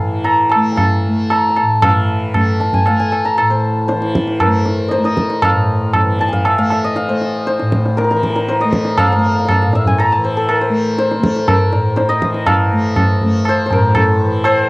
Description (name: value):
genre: indian classical, Hindustani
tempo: 118 BPM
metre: 7/4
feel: straight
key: A raga todi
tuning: A4 = 439 Hz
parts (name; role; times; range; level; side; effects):
- santur; melody; 0.0-14.7 s; A4 to Bb5; -17 LUFS; left 1 dB; cassette tape
- tanpura; drone; 0.0-14.7 s; A2 to A3; -18 LUFS; equal; cassette tape
- tabla; percussion; 0.2-14.6 s; none; -16 LUFS; right 1 dB; none
room: light reverb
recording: home recording on cassette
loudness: -12 LUFS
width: side -23 dB against mid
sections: 0.0-1.8 A section; 1.8-14.7 B section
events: speeding up 0.0-14.7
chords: none